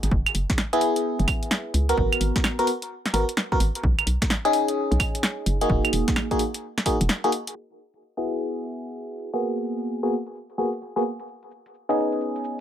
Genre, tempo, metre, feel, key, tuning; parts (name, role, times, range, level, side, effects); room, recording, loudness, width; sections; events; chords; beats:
UK garage, two-step garage; 129 BPM; 4/4; swing 64% on 16ths; A4 = 441 Hz
hollow knocking FM bass; bass; 0.0-7.1 s; E1 to C#2; -23 LUFS; equal; tube saturation
punchy analog drum machine; drums; 0.0-12.6 s; cabasa, claves, hi-hat, snare drum; -25 LUFS; right 1 dB
electronic kick drum; drums; 0.1-7.0 s; -26 LUFS; equal
FM electric piano; stabs; 0.7-12.6 s; A#3 to A#4; -25 LUFS; equal; chorus, phaser, dub echo
moderate small room reverb, RT60 0.5 s; low-pass filter; -22 LUFS; side -10 dB against mid
0.0-7.6 A section; 7.6-12.6 B section
filter sweep 7.6-12.6
0.1 F#9sus4; 2.0 G#m9; 3.8 B69; 5.7 Emaj9#11; 7.6 F#9sus4; 9.4 G#m9; 11.3 B69
| 0.11 0.58 1.04 1.51 | 1.98 2.44 2.90 3.37 | 3.83 4.30 4.76 5.23 | 5.70 6.16 6.63 7.09 | 7.56 8.02 8.49 8.95 | 9.42 9.88 10.35 10.81 | 11.28 11.74 12.21